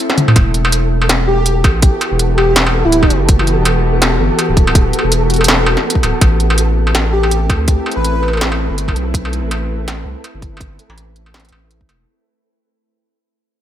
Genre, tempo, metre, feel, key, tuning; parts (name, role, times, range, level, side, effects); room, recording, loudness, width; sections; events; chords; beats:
half-time drum and bass; 164 BPM; 4/4; swing 57% on 16ths, half-time; A4 = 442 Hz
bowed-like drone; sustained chords; 0.0-12.0 s; E3 to B4; -20 LUFS; left 1 dB; built-in reverb, vintage 12-bit sampler grit, sidechain pumping
industrial drum kit; drums; 0.1-12.0 s; hi-hat, snare drum, struck metal, toms; -16 LUFS; equal
saturated sub bass; bass; 0.4-12.1 s; D1 to D2; -16 LUFS; equal
electronic kick drum; drums; 0.4-11.9 s; -12 LUFS; equal
flickering grainy texture; texture; 0.7-12.1 s; A4; -23 LUFS; right 1 dB; built-in reverb
airy dreamy lead; melody; 1.3-3.1, 7.1-8.5 s; E4 to B4; -18 LUFS; equal; chorus, digital delay
light reverb; -11 LUFS; side -11 dB against mid
0.0-12.1 A section
break 0.0-0.4; drop 0.0-12.1; drum fill 0.1; fade-out 6.2-12.1
0.4 Em; 6.2 Am
0.00 | 0.36 0.73 1.09 1.46 | 1.82 2.19 2.56 2.92 | 3.29 3.65 4.02 4.38 | 4.75 5.12 5.48 5.85 | 6.21 6.58 6.95 7.31 | 7.68 8.04 8.41 8.78 | 9.14 9.51 9.87 10.24 | 10.61 10.97 11.34 11.70